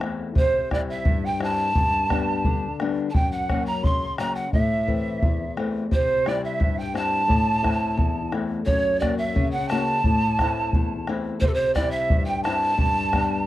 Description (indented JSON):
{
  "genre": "andean folk, Andean ensemble",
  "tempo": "87 BPM",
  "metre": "2/4",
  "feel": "straight",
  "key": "A dorian",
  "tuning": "A4 = 440 Hz",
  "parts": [
    { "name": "flamenco guitar", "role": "accompaniment", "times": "0.0-13.5 s", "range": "E2 to F#4", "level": "-26 LUFS", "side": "left 4 dB", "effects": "none" },
    { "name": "bombo", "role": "percussion", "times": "0.0-13.3 s", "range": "none", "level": "-25 LUFS", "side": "equal", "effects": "none" },
    { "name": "breathy reedy pan flute", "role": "melody", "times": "0.4-13.5 s", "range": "A4 to C6", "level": "-26 LUFS", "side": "right 1 dB", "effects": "none" },
    { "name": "breathy mellow quena", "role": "second line", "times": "0.4-13.5 s", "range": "A4 to C6", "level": "-28 LUFS", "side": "right 4 dB", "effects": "none" }
  ],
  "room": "studio reverb",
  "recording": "dry, close 1970s-style studio recording",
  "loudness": "-20 LUFS",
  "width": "side -14 dB against mid",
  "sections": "0.0-8.7 A section; 8.7-13.5 A section",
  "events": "none",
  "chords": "0.4 C; 1.8 G; 3.1 F#; 4.5 Am; 5.9 C; 7.3 Am; 8.7 F#; 10.1 Am; 11.4 C; 12.8 G"
}